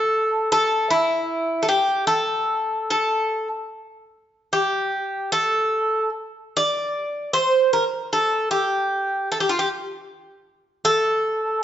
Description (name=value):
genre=fado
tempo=76 BPM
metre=4/4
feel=rubato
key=unclear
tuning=A4 = 440 Hz
part: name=Greek bouzouki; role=solo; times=0.0-11.6 s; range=E4 to D5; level=-19 LUFS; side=equal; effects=none
room=moderate recital hall reverb, RT60 1.5 s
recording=nothing above 7.7 kHz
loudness=-19 LUFS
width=side -10 dB against mid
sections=0.0-11.6 A section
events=none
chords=none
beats=| 0.51 1.29 2.08 2.89 | 3.71 4.52 5.32 6.13 | 6.93 7.72 8.51 9.29 | 10.06 10.85